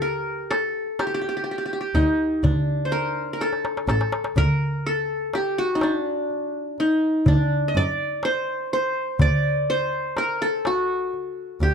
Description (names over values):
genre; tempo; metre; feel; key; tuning
Arabic maqam ensemble; 124 BPM (eighths); 10/8; straight; D maqam hijaz; A4 = 440 Hz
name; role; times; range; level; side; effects
qanun; melody; 0.0-11.7 s; D4 to Eb5+25c; -23 LUFS; equal; none
darbuka; percussion; 0.0-11.7 s; none; -24 LUFS; equal; none
clear double bass; bass; 2.0-11.7 s; A1 to F#2; -23 LUFS; equal; none
room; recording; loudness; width
moderate small room reverb, RT60 0.6 s; dark, warm production; -21 LUFS; side -6 dB against mid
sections
0.0-4.4 A section; 4.4-11.7 A section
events
drum fill 3.4-4.4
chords
none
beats
0.02 0.51 0.99 1.47 1.96 2.44 2.92 3.40 3.89 | 4.37 4.85 5.34 5.82 6.30 6.79 7.27 7.75 8.23 8.72 | 9.20 9.68 10.17 10.65 11.13 11.62